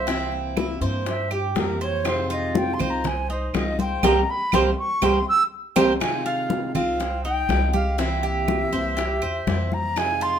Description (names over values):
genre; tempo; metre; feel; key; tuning
latin, Cuban son and guajira; 121 BPM; 4/4; straight; F minor; A4 = 440 Hz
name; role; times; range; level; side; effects
silver concert flute; melody; 0.0-10.4 s; G4 to E6; -25 LUFS; equal; none
picked steel-string acoustic guitar; accompaniment; 0.0-10.4 s; C3 to F4; -29 LUFS; left 2 dB; none
Cuban tres; arpeggios; 0.0-10.4 s; C4 to C5; -26 LUFS; right 5 dB; none
upright bass; bass; 0.0-10.4 s; C2 to G2; -28 LUFS; equal; none
bongos; percussion; 0.1-10.2 s; none; -30 LUFS; left 5 dB; none
congas; percussion; 0.1-10.4 s; none; -28 LUFS; left 3 dB; none
claves; percussion; 0.6-10.2 s; none; -32 LUFS; right 10 dB; none
room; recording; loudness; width
moderate large studio reverb, RT60 0.9 s; minimal, uncompressed stereo recording; -20 LUFS; side -8 dB against mid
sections
0.0-6.0 A section; 6.0-10.4 B section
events
flute solo 0.0-6.0; band accent 4.0-6.0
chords
0.1 C7; 2.1 Fm7; 4.0 C5; 6.0 Fm7; 8.0 C7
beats
| 0.07 0.57 1.07 1.56 | 2.06 2.55 3.04 3.54 | 4.03 4.53 5.02 5.52 | 6.01 6.50 7.00 7.49 | 7.99 8.48 8.97 9.47 | 9.96